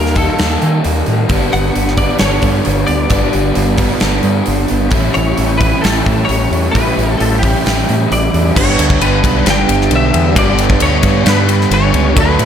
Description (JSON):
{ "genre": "rock, shoegaze and dream pop", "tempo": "132 BPM", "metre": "4/4", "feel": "straight", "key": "G lydian", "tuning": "A4 = 443 Hz", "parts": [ { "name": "direct-recorded clean electric guitar", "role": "melody", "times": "0.0-12.5 s", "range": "G4 to G5", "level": "-19 LUFS", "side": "left 2 dB", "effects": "ensemble chorus, tape echo" }, { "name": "direct-recorded clean electric guitar", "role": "arpeggios", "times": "0.0-12.5 s", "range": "E3 to A4", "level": "-24 LUFS", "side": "right 10 dB", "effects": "wide subtle chorus, tape echo" }, { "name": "crunchy overdriven guitar", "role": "riff", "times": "0.0-12.5 s", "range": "G2 to E4", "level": "-18 LUFS", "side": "right 9 dB", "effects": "reverse reverb" }, { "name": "raw garage guitar", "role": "riff", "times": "0.0-12.5 s", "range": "G2 to E4", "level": "-19 LUFS", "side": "left 12 dB", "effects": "overdrive, wide subtle chorus" }, { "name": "growling fingered electric bass", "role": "bass", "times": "0.0-12.5 s", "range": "G1 to Eb3", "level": "-16 LUFS", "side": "equal", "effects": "overdrive" }, { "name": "gated 80s drum kit", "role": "drums", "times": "0.1-12.5 s", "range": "crash cymbal, hi-hat, kick drum, ride cymbal, snare drum", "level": "-17 LUFS", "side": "equal", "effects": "none" } ], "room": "light reverb, studio reverb", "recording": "none", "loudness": "-10 LUFS", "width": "side -8 dB against mid", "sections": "0.0-8.6 A section; 8.6-12.5 B section", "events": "none", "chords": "0.0 Eb; 1.3 Gadd9; 4.9 A7(no3); 8.6 G", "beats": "0.39 0.84 | 1.29 1.75 2.20 2.66 | 3.11 3.56 4.02 4.47 | 4.93 5.38 5.83 6.29 | 6.74 7.19 7.65 8.10 | 8.55 9.01 9.46 9.91 | 10.36 10.81 11.27 11.72 | 12.17" }